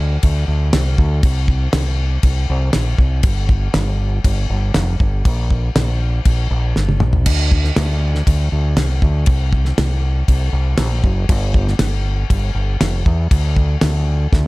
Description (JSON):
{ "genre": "classic rock", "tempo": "119 BPM", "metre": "4/4", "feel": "straight", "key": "unclear", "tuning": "A4 = 440 Hz", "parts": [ { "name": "growling fingered electric bass", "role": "bass", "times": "0.0-14.5 s", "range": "F1 to E2", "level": "-17 LUFS", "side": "equal", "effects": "overdrive" }, { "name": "damped 70s drum kit", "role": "drums", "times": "0.2-14.4 s", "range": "crash cymbal, kick drum, snare drum, toms", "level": "-18 LUFS", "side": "equal", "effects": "none" } ], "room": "little or no reverb", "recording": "none", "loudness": "-14 LUFS", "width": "side -21 dB against mid", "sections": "0.0-14.5 A section", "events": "drum fill 6.8-7.3", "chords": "none", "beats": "0.23 0.74 | 1.24 1.74 2.24 2.74 | 3.24 3.74 4.25 4.75 | 5.25 5.75 6.26 6.76 | 7.26 7.77 8.27 8.78 | 9.28 9.78 10.29 10.79 | 11.30 11.80 12.30 12.81 | 13.31 13.82 14.32" }